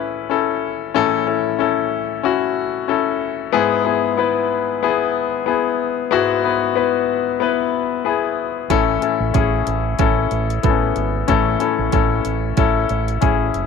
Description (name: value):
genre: piano-driven pop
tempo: 93 BPM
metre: 4/4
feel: swing 56% on 16ths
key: A major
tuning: A4 = 440 Hz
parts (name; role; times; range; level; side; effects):
- bright concert grand piano; accompaniment; 0.0-13.7 s; G#2 to B4; -17 LUFS; left 9 dB; none
- fingered electric bass with an envelope filter; bass; 8.7-13.7 s; F#1 to A1; -22 LUFS; right 2 dB; none
- deep house drum kit; drums; 8.7-13.7 s; hi-hat, kick drum; -20 LUFS; right 5 dB; none
room: light reverb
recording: 1960s-style stereo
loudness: -16 LUFS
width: side -5 dB against mid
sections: 0.0-13.7 A section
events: none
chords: 0.0 A; 3.5 E/G#; 8.7 A